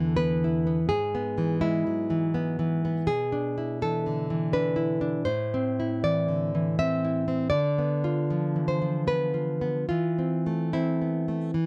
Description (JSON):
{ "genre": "romantic piece for solo classical guitar", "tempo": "72-84 BPM", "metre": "3/4", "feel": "rubato", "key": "A minor from 3.1 s", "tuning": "A4 = 437 Hz", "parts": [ { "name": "nylon-string guitar", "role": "solo", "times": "0.0-11.7 s", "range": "E2 to E5", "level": "-27 LUFS", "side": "equal", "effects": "none" } ], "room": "light reverb", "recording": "dark, warm production", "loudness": "-27 LUFS", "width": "mono", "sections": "0.0-11.7 A section", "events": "none", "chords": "0.0 E5; 0.9 E/G#; 3.1 E7/B; 5.3 Am; 7.5 Bdim/D; 9.9 Am/E" }